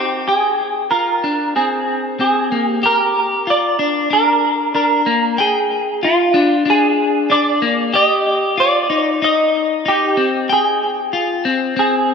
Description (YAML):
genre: dream pop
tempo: 94 BPM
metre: 4/4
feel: straight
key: Bb mixolydian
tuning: A4 = 440 Hz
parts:
  - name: semi-hollow electric guitar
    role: melody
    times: 0.0-12.1 s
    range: F4 to Eb5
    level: -16 LUFS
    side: right 2 dB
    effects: ensemble chorus, diffuse ambient delay
  - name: electric guitar at the edge of break-up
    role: arpeggios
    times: 0.0-12.1 s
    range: Bb3 to G5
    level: -17 LUFS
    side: left 4 dB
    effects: lush chorus, diffuse ambient delay
room: wet plate reverb, RT60 3.0 s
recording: dreamy mix soaked in reverb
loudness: -14 LUFS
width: side -6 dB against mid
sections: 0.0-2.8 A section; 2.8-12.1 B section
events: none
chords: 0.3 Fmadd9; 2.8 Bb7; 7.9 Eb; 10.5 Fmadd9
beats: | 0.28 0.92 1.56 2.19 | 2.83 3.47 4.11 4.75 | 5.39 6.03 6.66 7.30 | 7.94 8.58 9.22 9.85 | 10.49 11.13 11.77